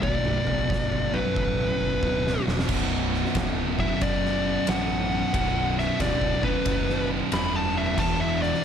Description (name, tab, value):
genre	stoner and doom metal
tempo	91 BPM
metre	4/4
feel	swing 65% on 8ths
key	B minor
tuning	A4 = 441 Hz
part	fuzz lead guitar	melody	0.0-8.6 s	B4 to B5	-28 LUFS	left 1 dB	distortion, slapback echo
part	thick fuzz guitar	riff	0.0-8.6 s	B1 to E3	-30 LUFS	left 10 dB	distortion
part	thick fuzz guitar	riff	0.0-8.6 s	B1 to E3	-29 LUFS	right 10 dB	distortion
part	fuzz picked electric bass	bass	0.0-8.5 s	B0 to A1	-31 LUFS	equal	overdrive
part	oversized low-tuned drum kit	drums	0.0-8.6 s	crash cymbal, kick drum, ride cymbal, snare drum, toms	-30 LUFS	equal	none
part	high-gain distorted guitar	riff	2.7-8.6 s	B1 to E3	-33 LUFS	equal	distortion
room	small room ambience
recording	none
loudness	-22 LUFS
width	side -8 dB against mid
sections	0.0-2.7 A section; 2.7-8.6 B section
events	drum fill 2.0-2.7; lead electric guitar solo 2.7-8.6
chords	0.0 Bm; 8.0 E5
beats	| 0.03 0.70 1.36 2.03 | 2.69 3.35 4.01 4.68 | 5.34 6.00 6.66 7.32 | 7.97 8.63